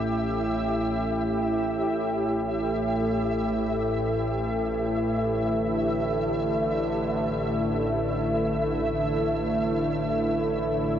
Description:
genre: dark ambient drone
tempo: free time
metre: none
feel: none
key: unclear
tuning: A4 = 445 Hz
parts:
  - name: sweeping resonant pad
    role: sustained chords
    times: 0.0-11.0 s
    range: D3 to G4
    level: -26 LUFS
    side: equal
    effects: chorus
  - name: overtone-sweeping drone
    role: drone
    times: 0.0-11.0 s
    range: A1 to A2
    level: -28 LUFS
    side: equal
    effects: chorus, built-in reverb
  - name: flickering grainy texture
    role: texture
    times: 0.0-11.0 s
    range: E5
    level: -33 LUFS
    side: equal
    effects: built-in reverb
room: wet cathedral reverb, RT60 5.3 s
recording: worn, warbling old tape, cassette tape, warbly pitch drift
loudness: -24 LUFS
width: side -9 dB against mid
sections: 0.0-11.0 A section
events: none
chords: 0.0 A5; 5.4 Dsus2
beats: free time

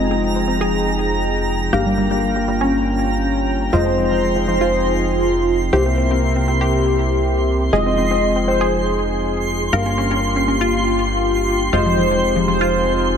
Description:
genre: house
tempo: 120 BPM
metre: 4/4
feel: straight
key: F minor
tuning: A4 = 439 Hz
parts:
  - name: warm analog pad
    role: sustained chords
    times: 0.0-13.2 s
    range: C3 to G5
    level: -24 LUFS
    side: right 1 dB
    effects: chorus
  - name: tight sequenced synth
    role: arpeggios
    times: 0.0-13.2 s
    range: F3 to Bb4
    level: -22 LUFS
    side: left 1 dB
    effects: chorus, phaser, ping-pong delay
  - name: felt-muted upright piano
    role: stabs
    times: 0.0-13.2 s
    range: G2 to F5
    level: -22 LUFS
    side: left 3 dB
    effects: ping-pong delay
  - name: fat analog bass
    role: bass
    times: 0.0-13.2 s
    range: F1 to C2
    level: -22 LUFS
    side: right 1 dB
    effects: none
  - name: twinkling granular texture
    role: texture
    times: 0.0-13.2 s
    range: Bb5 to C6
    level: -25 LUFS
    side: right 1 dB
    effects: built-in reverb
  - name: wide unison lead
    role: melody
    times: 3.7-12.9 s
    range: C5 to Eb5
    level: -22 LUFS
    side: equal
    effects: ping-pong delay
room: moderate huge ambient reverb, RT60 4.3 s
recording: none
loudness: -15 LUFS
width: side -7 dB against mid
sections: 0.0-13.2 A section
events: filter sweep on synth arpeggio sound 0.0-13.2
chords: 0.0 Fm7; 1.7 Gm7b5; 3.7 Fm7; 5.7 C7; 7.7 Fm7; 9.7 Gm7b5; 11.7 Fm7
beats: 0.23 0.73 1.23 | 1.73 2.23 2.73 3.23 | 3.73 4.23 4.73 5.23 | 5.73 6.23 6.73 7.23 | 7.73 8.23 8.73 9.23 | 9.73 10.23 10.73 11.23 | 11.73 12.23 12.73

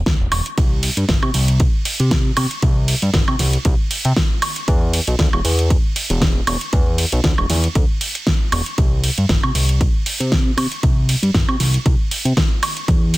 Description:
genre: nu-disco, nu disco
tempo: 117 BPM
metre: 4/4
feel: swing 55% on 16ths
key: unclear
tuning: A4 = 440 Hz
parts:
  - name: fat analog bass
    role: bass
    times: 0.0-13.2 s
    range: E1 to C3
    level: -18 LUFS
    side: equal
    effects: sidechain pumping
  - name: electronic kick drum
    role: drums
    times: 0.1-13.0 s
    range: none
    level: -17 LUFS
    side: equal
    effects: studio reverb
  - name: pop drum kit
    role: drums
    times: 0.1-13.2 s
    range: hi-hat, ride cymbal, snare drum, woodblock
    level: -21 LUFS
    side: right 1 dB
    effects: studio reverb
room: little or no reverb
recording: dense, heavily limited modern master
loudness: -15 LUFS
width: side -19 dB against mid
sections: 0.0-13.2 A section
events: none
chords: none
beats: 0.06 | 0.57 1.09 1.60 2.11 | 2.63 3.14 3.65 4.17 | 4.68 5.19 5.70 6.22 | 6.73 7.24 7.75 8.27 | 8.78 9.29 9.81 10.32 | 10.83 11.34 11.86 12.37 | 12.88

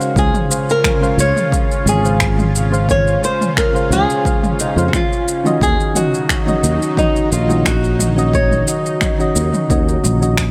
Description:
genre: sunset chillout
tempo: 88 BPM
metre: 4/4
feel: swing 53% on 16ths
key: Db major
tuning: A4 = 440 Hz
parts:
  - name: soft electric-piano-like synth keys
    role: accompaniment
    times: 0.0-10.4 s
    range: Db3 to F5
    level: -22 LUFS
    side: equal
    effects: chorus, digital delay
  - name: lush unison pad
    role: sustained chords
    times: 0.0-10.5 s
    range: Db3 to Gb4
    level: -27 LUFS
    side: equal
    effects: chorus, phaser
  - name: deep house drum kit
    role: drums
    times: 0.0-10.5 s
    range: finger snaps, shaker, toms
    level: -23 LUFS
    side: equal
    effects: overdrive
  - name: flamenco guitar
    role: melody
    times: 0.2-10.5 s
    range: Eb4 to Db5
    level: -22 LUFS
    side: equal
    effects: vintage 12-bit sampler grit, tape echo
  - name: sustaining fretless electric bass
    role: bass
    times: 0.2-10.5 s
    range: Ab1 to F2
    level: -19 LUFS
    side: equal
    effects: ensemble chorus
  - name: electronic kick drum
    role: drums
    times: 0.2-10.5 s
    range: none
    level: -22 LUFS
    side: equal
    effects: overdrive
room: light reverb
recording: none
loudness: -15 LUFS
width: mono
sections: 0.0-10.5 A section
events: none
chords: 0.2 Dbmaj7; 5.6 Ebm7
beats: | 0.16 0.84 1.52 2.20 | 2.88 3.57 4.25 4.93 | 5.61 6.29 6.98 7.66 | 8.34 9.02 9.70 10.38

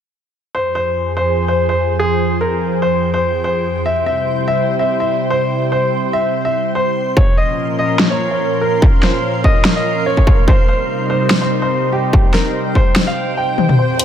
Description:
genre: heavy wobble dubstep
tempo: 145 BPM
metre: 4/4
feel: swing 53% on 16ths, half-time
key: F minor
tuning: A4 = 437 Hz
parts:
  - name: warm grand piano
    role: melody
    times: 0.5-14.0 s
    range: G4 to G5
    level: -18 LUFS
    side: equal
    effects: low-pass filter, dub echo
  - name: lush unison pad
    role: sustained chords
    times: 0.7-14.0 s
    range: F2 to C5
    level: -19 LUFS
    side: equal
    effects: chorus, phaser, sidechain pumping
  - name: granular cloud pad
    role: texture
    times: 1.8-14.0 s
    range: F4 to C6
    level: -26 LUFS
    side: right 2 dB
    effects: built-in reverb, sidechain pumping
  - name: electronic kick drum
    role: drums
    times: 7.2-12.8 s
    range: none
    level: -12 LUFS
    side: equal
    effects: distortion
  - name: dubstep drum kit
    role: drums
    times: 8.0-14.0 s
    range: hi-hat, snare drum, toms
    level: -16 LUFS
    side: left 1 dB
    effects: low-pass filter on snare, low-pass filter on toms, low-pass filter on hats
  - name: riser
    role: sound effects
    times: 13.9-14.0 s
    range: none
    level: -28 LUFS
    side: left 2 dB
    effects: none
room: light reverb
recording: none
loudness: -13 LUFS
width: side -9 dB against mid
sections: 0.5-13.8 A section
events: fade-in on ambient pad 0.5-13.8; kick drops out 13.4-13.8; drum fill 13.6; riser 13.9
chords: 0.5 Fm; 3.9 C; 7.2 Bbm; 10.5 Cm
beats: | 0.55 0.96 1.37 1.79 | 2.20 2.62 3.03 3.44 | 3.86 4.27 4.68 5.10 | 5.51 5.93 6.34 6.75 | 7.17 7.58 8.00 8.41 | 8.82 9.24 9.65 10.06 | 10.48 10.89 11.30 11.72 | 12.13 12.55 12.96 13.37 | 13.79

